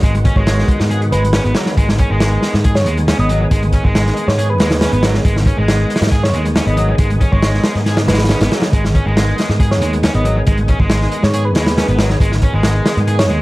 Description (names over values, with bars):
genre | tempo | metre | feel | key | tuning
breakbeat, breaks | 138 BPM | 4/4 | straight | G# minor pentatonic | A4 = 440 Hz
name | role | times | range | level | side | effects
tonewheel organ | sustained chords | 0.0-13.4 s | D#3 to G#4 | -23 LUFS | right 1 dB | overdrive, chorus vibrato, slow rotary speaker, vintage 12-bit sampler grit, sidechain pumping
thick fuzz guitar | riff | 0.0-13.4 s | F#3 to G#4 | -20 LUFS | equal | distortion, tube saturation, digital delay
picked electric bass | bass | 0.0-13.4 s | G#1 to G#2 | -16 LUFS | equal | none
crunchy breakbeat drum kit | drums | 0.0-13.4 s | hi-hat, kick drum, snare drum | -16 LUFS | equal | none
soft struck synth lead | melody | 0.4-13.3 s | B4 to D#5 | -24 LUFS | equal | chorus, AM radio sound, digital delay
room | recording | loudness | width
light reverb | vinyl crackle | -12 LUFS | side -19 dB against mid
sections
0.0-13.4 A section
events
none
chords
0.0 G#m7